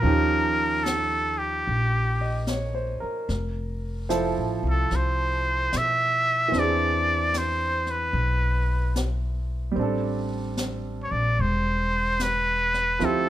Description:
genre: jazz.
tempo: 74 BPM.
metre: 4/4.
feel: swing 66% on 8ths.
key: unclear.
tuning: A4 = 438 Hz.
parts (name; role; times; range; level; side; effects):
trumpet with straight mute; melody; 0.0-13.3 s; G4 to E5; -24 LUFS; equal; none.
clear grand piano; accompaniment; 0.0-13.3 s; E3 to Eb5; -29 LUFS; right 3 dB; none.
upright bass; bass; 0.0-13.3 s; E1 to B2; -27 LUFS; left 1 dB; none.
jazz brush drum kit; drums; 0.0-13.3 s; brushed snare drum, hi-hat, snare drum; -35 LUFS; left 2 dB; none.
room: light reverb.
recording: minimal, uncompressed stereo recording.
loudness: -22 LUFS.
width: side -13 dB against mid.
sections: 0.0-13.3 A section.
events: none.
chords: 0.0 Eb9; 3.3 Fmaj7; 6.5 E7b13; 9.8 Am11.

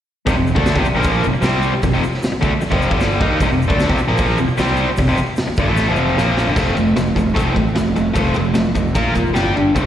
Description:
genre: garage rock duo or trio.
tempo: 152 BPM.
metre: 4/4.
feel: straight.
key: F mixolydian.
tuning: A4 = 436 Hz.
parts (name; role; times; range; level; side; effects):
overdriven electric guitar; riff; 0.3-9.9 s; F2 to Bb4; -17 LUFS; equal; slapback echo.
fuzz fingered electric bass; bass; 0.3-9.9 s; F1 to Eb2; -20 LUFS; equal; overdrive, tube saturation.
raw garage drum kit; drums; 0.3-9.9 s; crash cymbal, hi-hat, kick drum, ride cymbal, snare drum; -21 LUFS; equal; none.
tube shaker; percussion; 0.3-9.9 s; none; -45 LUFS; left 3 dB; none.
room: light reverb, small room ambience.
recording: live gig heard through the venue's PA, recital hall reverb.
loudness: -14 LUFS.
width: side -10 dB against mid.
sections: 0.3-6.6 A section; 6.6-9.9 B section.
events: drum fill 5.8-6.6.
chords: 0.3 F; 9.0 Bb5; 9.4 G5.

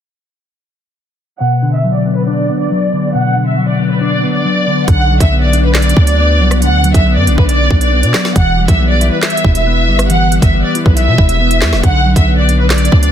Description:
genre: hip hop, drill.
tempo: 138 BPM.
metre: 4/4.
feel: half-time.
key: B minor.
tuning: A4 = 440 Hz.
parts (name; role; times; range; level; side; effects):
warm studio violin section; melody; 1.4-13.1 s; B4 to F#5; -16 LUFS; right 1 dB; low-pass filter, digital delay.
mellow electric guitar; accompaniment; 1.4-13.1 s; B2 to E5; -15 LUFS; left 2 dB; ensemble chorus, low-pass filter.
hard-hitting 808-style bass; bass; 4.9-13.1 s; E1 to B2; -12 LUFS; right 1 dB; none.
drill drum kit; drums; 4.9-13.1 s; handclaps, hi-hat, kick drum, rim click, snare drum; -12 LUFS; right 1 dB; none.
room: digital ambience.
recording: dense, heavily limited modern master, low-pass filter.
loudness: -9 LUFS.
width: side -9 dB against mid.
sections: 1.4-4.9 A section; 4.9-13.1 B section.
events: filter sweep 1.4-4.9.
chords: 1.4 Bm; 8.4 Em; 11.8 Bm.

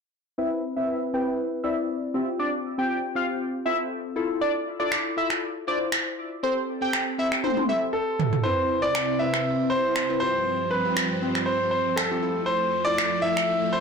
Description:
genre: dance-pop.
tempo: 119 BPM.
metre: 4/4.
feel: straight.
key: C major.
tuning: A4 = 440 Hz.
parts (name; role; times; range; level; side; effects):
fat analog lead; melody; 0.4-7.8 s; C5 to G5; -28 LUFS; equal; chorus, phaser, low-pass filter, dub echo.
glassy wavetable pluck; accompaniment; 0.4-13.8 s; C4 to D5; -29 LUFS; left 2 dB; chorus, low-pass filter.
house drum kit; drums; 4.9-13.5 s; finger snaps, toms; -27 LUFS; right 1 dB; soft clipping on snare.
clear concert grand piano; melody; 7.9-13.8 s; A4 to E5; -24 LUFS; equal; none.
string machine, violins; sustained chords; 8.4-13.8 s; F2 to E4; -29 LUFS; equal; ensemble chorus.
room: moderate digital room reverb, RT60 1.0 s, digital ambience.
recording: blown-out, overdriven recording, overdrive.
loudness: -23 LUFS.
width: side -5 dB against mid.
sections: 0.4-8.4 A section; 8.4-13.8 B section.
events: filter sweep 0.4-8.4; drum fill 7.4-8.4.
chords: 0.4 Cmaj7; 2.1 G7sus4; 4.2 Fmaj7; 6.4 Am7; 8.4 Cmaj7; 10.2 G7sus4; 12.2 Fmaj7.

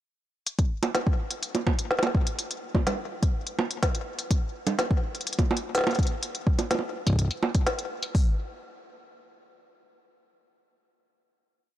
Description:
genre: IDM.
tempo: 125 BPM.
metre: 4/4.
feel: straight.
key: none.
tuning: none.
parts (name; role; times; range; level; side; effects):
organic electronic drum kit; drums; 0.5-8.1 s; bongos, hi-hat, snare drum; -28 LUFS; right 1 dB; small room ambience, ping-pong delay.
organic electronic drum kit; drums; 0.6-8.3 s; hi-hat, kick drum; -24 LUFS; equal; small room ambience.
room: light reverb, digital ambience.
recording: blown-out, overdriven recording, overdrive.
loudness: -24 LUFS.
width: side -13 dB against mid.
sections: 0.5-8.1 groove; 8.1-11.8 final hit.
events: none.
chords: none.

